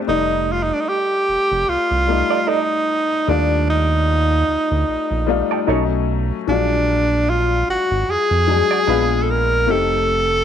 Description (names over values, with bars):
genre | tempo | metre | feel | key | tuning
R&B, neo-soul | 75 BPM | 4/4 | swing 58% on 16ths | unclear | A4 = 442 Hz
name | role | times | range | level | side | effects
warm upright piano | accompaniment | 0.0-10.4 s | F#3 to D5 | -23 LUFS | left 11 dB | none
breathy tenor saxophone | melody | 0.1-10.4 s | D4 to Bb4 | -18 LUFS | right 1 dB | slapback echo
round analog bass | bass | 0.1-10.4 s | F1 to F2 | -21 LUFS | right 2 dB | none
semi-hollow electric guitar | second line | 2.3-9.0 s | D4 to D5 | -24 LUFS | right 14 dB | wah
room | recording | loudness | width
light reverb, studio ambience | 1960s-style stereo with parts hard left and right | -16 LUFS | side -9 dB against mid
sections
0.1-10.4 A section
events
none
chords
0.1 F13; 3.3 Ebmaj9#11; 5.7 B9; 6.5 Bb7b13; 8.9 Bb7b9; 9.7 F7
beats
| 0.07 0.87 1.67 2.47 | 3.27 4.07 4.87 5.67 | 6.47 7.27 8.07 8.87 | 9.67